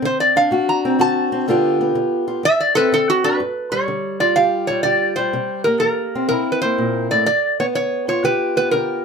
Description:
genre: acoustic country blues, solo or duo.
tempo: 124 BPM.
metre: 4/4.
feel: swing 68% on 8ths.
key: G mixolydian.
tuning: A4 = 440 Hz.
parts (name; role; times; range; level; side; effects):
fingerpicked acoustic archtop guitar; accompaniment; 0.0-9.0 s; D2 to G4; -20 LUFS; equal; none.
metal-body resonator slide guitar; melody; 0.1-9.0 s; F#4 to Bb5; -18 LUFS; right 1 dB; none.
room: light reverb.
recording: close, detailed microphones.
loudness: -16 LUFS.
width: side -5 dB against mid.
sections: 0.0-3.4 A section; 3.4-9.0 B section.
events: resonator guitar played with a steel bar solo 0.0-3.4.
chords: 0.0 D7; 1.5 G7; 2.4 D5; 3.4 G5; 5.3 C7; 7.3 G7.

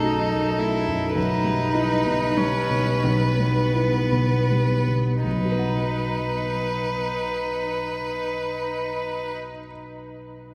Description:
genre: classical, slow romantic movement for piano trio.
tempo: 26-37 BPM (dotted quarters).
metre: 6/8.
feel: rubato.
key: B major.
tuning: A4 = 440 Hz.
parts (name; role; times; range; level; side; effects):
rich violin; melody; 0.0-9.4 s; A4 to B4; -30 LUFS; equal; none.
rich cello; second line; 0.0-9.4 s; B3 to E4; -30 LUFS; equal; none.
dark grand piano; accompaniment; 0.0-10.5 s; B1 to F#5; -26 LUFS; equal; none.
room: wet cathedral reverb, RT60 5.7 s.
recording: recorded in a church or concert hall.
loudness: -23 LUFS.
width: mono.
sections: 0.0-5.2 A section; 5.2-9.3 B section.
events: slowing down 0.0-5.2.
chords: 0.0 B7; 1.2 Em/B; 5.2 B.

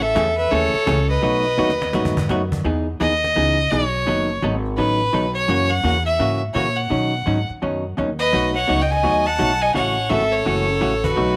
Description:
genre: country, western swing.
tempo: 169 BPM.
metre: 4/4.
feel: swing 64% on 8ths.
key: unclear.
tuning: A4 = 440 Hz.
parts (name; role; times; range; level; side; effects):
bright fiddle; melody; 0.0-11.4 s; B4 to A5; -24 LUFS; equal; none.
bright fiddle; second line; 0.0-2.3, 8.2-11.4 s; F#4 to F#5; -25 LUFS; equal; slapback echo.
vintage hollow-body jazz guitar; accompaniment; 0.0-11.4 s; B2 to A4; -25 LUFS; equal; none.
upright bass; bass; 0.0-11.4 s; F#1 to B2; -26 LUFS; equal; none.
cajon; drums; 0.2-11.2 s; none; -31 LUFS; equal; none.
room: light reverb, studio reverb.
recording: none.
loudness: -20 LUFS.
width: mono.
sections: 0.0-2.6 A section; 2.6-11.4 B section.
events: drum fill 1.6-2.3.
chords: 0.0 Amaj7; 1.2 B7; 2.6 Emaj7; 4.1 B7; 5.5 F#7; 6.9 Badd9; 8.3 B7; 9.8 F#m7.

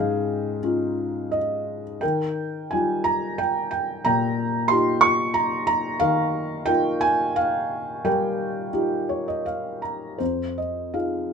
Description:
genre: classical, lyrical solo piano.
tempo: 80-94 BPM.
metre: 3/4.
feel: rubato.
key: unclear.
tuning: A4 = 440 Hz.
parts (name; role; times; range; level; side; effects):
felt-muted upright piano; solo; 0.0-11.3 s; F2 to Db6; -22 LUFS; equal; none.
room: light reverb.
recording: none.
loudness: -21 LUFS.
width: side -6 dB against mid.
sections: 0.0-10.2 A section; 10.2-11.3 B section.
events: felt piano fill 8.7-10.2.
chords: 0.0 Dbadd9; 2.0 Ebadd9; 10.2 Fm7.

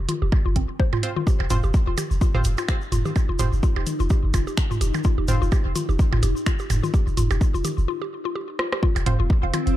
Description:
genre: minimal techno.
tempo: 127 BPM.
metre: 4/4.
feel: swing 56% on 16ths.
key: unclear.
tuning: A4 = 439 Hz.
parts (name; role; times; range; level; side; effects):
punchy sub bass; bass; 0.0-9.8 s; F1 to Ab1; -22 LUFS; equal; sidechain pumping.
mallet-like synth pluck; riff; 0.1-9.6 s; C4 to F5; -30 LUFS; left 2 dB; chorus, sidechain pumping, ping-pong delay.
house drum kit; drums; 0.1-9.8 s; finger snaps, hi-hat, rim click; -31 LUFS; right 1 dB; none.
electronic toms and percussion blips; percussion; 0.1-9.6 s; none; -28 LUFS; right 1 dB; none.
electronic kick drum; drums; 0.3-9.4 s; none; -20 LUFS; equal; none.
filtered dub chord stab; stabs; 1.0-5.4, 9.1 s; C4 to C5; -33 LUFS; right 2 dB; chorus, digital delay.
tube shaker; percussion; 1.3-7.9 s; none; -38 LUFS; left 3 dB; none.
swarming drone; texture; 2.6-7.9 s; Eb4; -35 LUFS; left 1 dB; built-in reverb, sidechain pumping.
granular cloud pad; texture; 9.2-9.8 s; C4 to C6; -28 LUFS; right 1 dB; built-in reverb, sidechain pumping.
room: little or no reverb.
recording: dark, warm production.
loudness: -20 LUFS.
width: side -14 dB against mid.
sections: 0.0-8.8 A section.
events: break 7.9-8.8; drum fill 8.6.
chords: 0.0 F5.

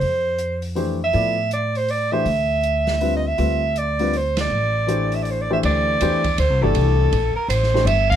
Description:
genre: modal jazz.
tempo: 160 BPM.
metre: 3/4.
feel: swing 64% on 8ths.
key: D dorian.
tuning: A4 = 440 Hz.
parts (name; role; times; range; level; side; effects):
mellow soprano saxophone; melody; 0.0-8.2 s; A4 to F5; -21 LUFS; right 2 dB; none.
upright bass; bass; 0.0-8.2 s; G1 to A2; -22 LUFS; equal; none.
open jazz drum kit; drums; 0.0-8.2 s; crash cymbal, hi-hat, kick drum, ride cymbal, snare drum; -30 LUFS; right 2 dB; none.
warm baby grand piano; accompaniment; 0.8-7.9 s; D3 to E5; -24 LUFS; left 3 dB; none.
room: light reverb.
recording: none.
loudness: -18 LUFS.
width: side -10 dB against mid.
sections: 0.0-5.6 A section; 5.6-8.2 B section.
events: band accent 4.3.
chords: 0.0 Dm9; 5.6 Gsus4.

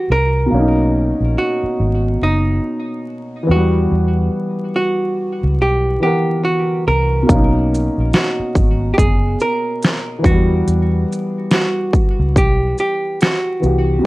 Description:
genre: lo-fi hip hop.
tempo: 71 BPM.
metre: 4/4.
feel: swing 61% on 16ths.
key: unclear.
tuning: A4 = 440 Hz.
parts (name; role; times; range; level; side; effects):
archtop guitar, miked and amplified; melody; 0.0-13.8 s; D#4 to A#4; -20 LUFS; right 1 dB; low-pass filter, tape echo.
dark upright piano; accompaniment; 0.0-14.1 s; B2 to F#5; -20 LUFS; equal; cassette tape, low-pass filter.
vintage muted fingered electric bass; bass; 0.1-14.0 s; F#1 to E2; -17 LUFS; equal; none.
dubstep drum kit; drums; 7.3-13.9 s; hi-hat, kick drum, shaker, snare drum; -15 LUFS; equal; vintage 12-bit sampler grit.
room: light reverb.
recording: vinyl crackle.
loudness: -14 LUFS.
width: side -19 dB against mid.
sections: 0.0-14.1 A section.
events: none.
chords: 0.0 Emadd9; 0.5 Bmaj9; 3.5 Emadd9; 7.3 Bmaj9; 10.2 Emadd9.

